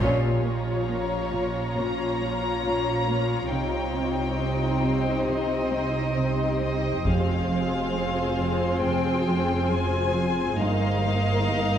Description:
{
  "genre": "cinematic, suspense film score",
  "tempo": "68 BPM",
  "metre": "4/4",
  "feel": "straight",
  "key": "unclear",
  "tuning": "A4 = 445 Hz",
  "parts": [
    { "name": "warm chamber violin section", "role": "second line", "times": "0.0-11.8 s", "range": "Eb4 to Eb5", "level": "-31 LUFS", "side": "left 3 dB", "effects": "none" },
    { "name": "warm symphonic viola section", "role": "accompaniment", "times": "0.0-11.8 s", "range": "F3 to F4", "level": "-30 LUFS", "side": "left 1 dB", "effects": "none" },
    { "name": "ethereal airy pad", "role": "sustained chords", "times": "0.0-11.8 s", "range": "F4 to C6", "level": "-31 LUFS", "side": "left 1 dB", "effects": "ensemble chorus, built-in reverb" },
    { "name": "dark chamber cello section", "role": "riff", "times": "0.0-11.7 s", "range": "F2 to C4", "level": "-32 LUFS", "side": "right 1 dB", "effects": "none" },
    { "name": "dark chamber cello section", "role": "bass", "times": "0.0-11.8 s", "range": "F2 to C3", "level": "-31 LUFS", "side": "right 2 dB", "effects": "none" },
    { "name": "dark chamber double bass section", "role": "bass", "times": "0.0-11.8 s", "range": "F1 to C2", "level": "-31 LUFS", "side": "right 3 dB", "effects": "none" },
    { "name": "warm chamber violin section", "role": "melody", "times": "0.9-11.8 s", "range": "Db5 to Bb5", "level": "-31 LUFS", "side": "left 2 dB", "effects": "none" },
    { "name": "taiko ensemble", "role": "drums", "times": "7.1-8.8 s", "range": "none", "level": "-32 LUFS", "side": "left 1 dB", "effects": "none" }
  ],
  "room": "wet scoring stage reverb, RT60 1.6 s",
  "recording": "dark, warm production",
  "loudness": "-23 LUFS",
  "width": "side -9 dB against mid",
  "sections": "0.0-11.8 A section",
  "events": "band accent 0.0-0.9",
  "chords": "0.0 Bbm; 3.5 Cm; 7.1 Fm; 10.6 Eb/G"
}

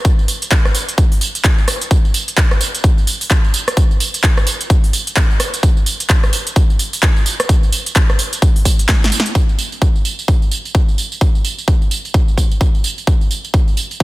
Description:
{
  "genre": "house",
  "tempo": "129 BPM",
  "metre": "4/4",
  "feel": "swing 60% on 16ths",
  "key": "none",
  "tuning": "none",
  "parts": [
    { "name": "electronic kick drum", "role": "drums", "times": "0.0-14.0 s", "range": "none", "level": "-12 LUFS", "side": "equal", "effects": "none" },
    { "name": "big-room dance drum kit", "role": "drums", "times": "0.1-14.0 s", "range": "handclaps, hi-hat, rim click, snare drum, tambourine", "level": "-19 LUFS", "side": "right 1 dB", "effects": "none" }
  ],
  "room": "little or no reverb",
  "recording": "dense, heavily limited modern master",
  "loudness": "-12 LUFS",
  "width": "side -19 dB against mid",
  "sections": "0.0-9.4 A section; 9.4-14.0 B section",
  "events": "drum fill 8.9-9.4",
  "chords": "none"
}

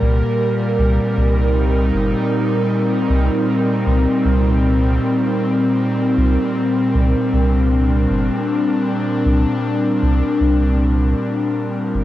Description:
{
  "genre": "ambient dub",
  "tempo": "78 BPM",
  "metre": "4/4",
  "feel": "swing 60% on 16ths",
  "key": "C minor",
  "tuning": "A4 = 440 Hz",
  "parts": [
    { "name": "airy breathy pad", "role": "sustained chords", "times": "0.0-12.0 s", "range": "Bb2 to Bb4", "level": "-16 LUFS", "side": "left 1 dB", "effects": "chorus" },
    { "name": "soft dub sub bass", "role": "bass", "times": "0.0-12.0 s", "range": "G1 to C2", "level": "-16 LUFS", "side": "equal", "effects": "tube saturation" }
  ],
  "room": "light reverb",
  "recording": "home recording on cassette",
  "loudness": "-15 LUFS",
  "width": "side -14 dB against mid",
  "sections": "0.0-12.0 A section",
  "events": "none",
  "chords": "0.0 Cm9"
}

